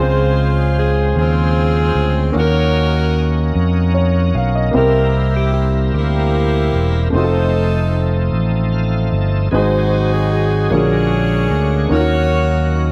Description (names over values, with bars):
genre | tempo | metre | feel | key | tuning
gospel | 50 BPM (dotted quarters) | 6/8 | straight | unclear | A4 = 440 Hz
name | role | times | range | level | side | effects
clear saxophone section | melody | 0.0-12.9 s | Bb3 to Db5 | -22 LUFS | equal | none
warm grand piano | accompaniment | 0.0-12.9 s | Ab2 to F5 | -23 LUFS | equal | none
bright tonewheel organ | sustained chords | 0.0-12.9 s | Db3 to A5 | -26 LUFS | equal | overdrive, chorus vibrato, slow rotary speaker
fingered electric bass | bass | 0.0-12.9 s | E1 to F2 | -18 LUFS | equal | none
room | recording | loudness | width
light reverb | none | -16 LUFS | mono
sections
0.0-12.9 A section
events
tonewheel organ fill 8.3-9.5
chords
0.0 Dbmaj7; 2.4 Ebm7; 4.7 C7; 7.1 F7; 9.5 Ab7; 10.7 Bb7alt; 11.9 Ebm7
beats
1.16 | 2.36 3.55 | 4.75 5.94 | 7.13 8.33 | 9.52 10.71 | 11.91